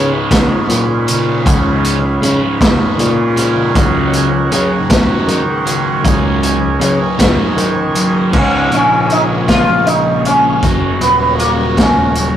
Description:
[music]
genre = psychedelic rock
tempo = 52 BPM (dotted quarters)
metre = 6/8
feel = straight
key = Db mixolydian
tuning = A4 = 439 Hz
[part]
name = combo organ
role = sustained chords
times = 0.0-12.4 s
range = Gb3 to Cb5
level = -21 LUFS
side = right 4 dB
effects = none
[part]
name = thick fuzz guitar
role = riff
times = 0.0-12.4 s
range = Db2 to Gb3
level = -19 LUFS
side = left 1 dB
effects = distortion, phaser
[part]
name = fuzz picked electric bass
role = bass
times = 0.0-12.4 s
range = Eb1 to Eb3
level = -17 LUFS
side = equal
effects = overdrive
[part]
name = tanpura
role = drone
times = 0.0-12.4 s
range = Db2 to Db3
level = -21 LUFS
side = right 1 dB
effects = none
[part]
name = vintage drum kit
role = drums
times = 0.3-12.3 s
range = crash cymbal, hi-hat, kick drum, snare drum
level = -15 LUFS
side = equal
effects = none
[part]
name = congas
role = percussion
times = 0.3-12.0 s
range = none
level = -26 LUFS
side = left 2 dB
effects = none
[part]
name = sitar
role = melody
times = 8.7-12.4 s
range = Bb3 to F4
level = -13 LUFS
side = equal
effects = none
[sound]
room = moderate studio reverb, RT60 0.6 s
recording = rough rehearsal-room recording, warm saturation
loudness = -10 LUFS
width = side -10 dB against mid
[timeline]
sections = 0.0-8.3 A section; 8.3-12.4 B section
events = none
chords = 0.0 Db7; 3.7 Gb/Db; 8.3 Db; 10.6 Gb

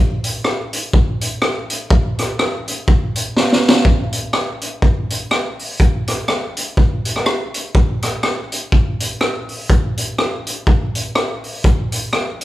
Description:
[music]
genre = ska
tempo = 123 BPM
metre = 4/4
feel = swing 58% on 8ths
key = none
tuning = none
[part]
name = raw garage drum kit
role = drums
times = 0.2-12.4 s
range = hi-hat, kick drum, rim click, snare drum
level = -15 LUFS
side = equal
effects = none
[sound]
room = moderate large studio reverb, RT60 1.2 s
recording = band playing live in one room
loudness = -15 LUFS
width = side -15 dB against mid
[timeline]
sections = 0.0-3.9 A section; 3.9-12.4 B section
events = drum fill 3.4-3.9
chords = none

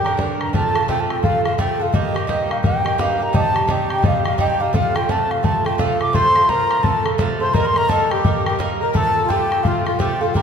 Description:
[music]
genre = celtic folk, Celtic hornpipe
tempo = 171 BPM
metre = 4/4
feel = swing 62% on 8ths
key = unclear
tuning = A4 = 440 Hz
[part]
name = reedy baroque flute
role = melody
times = 0.0-10.4 s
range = Eb5 to D6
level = -20 LUFS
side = left 1 dB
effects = none
[part]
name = accordion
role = second line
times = 0.0-0.2, 6.1-10.4 s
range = F4 to C5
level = -25 LUFS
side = left 4 dB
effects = light tremolo tuning
[part]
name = Irish bouzouki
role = accompaniment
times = 0.0-10.4 s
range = G2 to Bb4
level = -22 LUFS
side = right 5 dB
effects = none
[part]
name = bodhran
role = percussion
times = 0.1-10.4 s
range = none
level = -21 LUFS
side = left 1 dB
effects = none
[sound]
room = wet church reverb, RT60 2.6 s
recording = recorded in a church or concert hall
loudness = -16 LUFS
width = side -7 dB against mid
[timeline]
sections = 0.5-10.4 A section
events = none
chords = 0.0 Gm; 0.5 F; 1.9 Eb; 3.3 Cm; 4.7 F; 7.5 Eb; 8.9 F

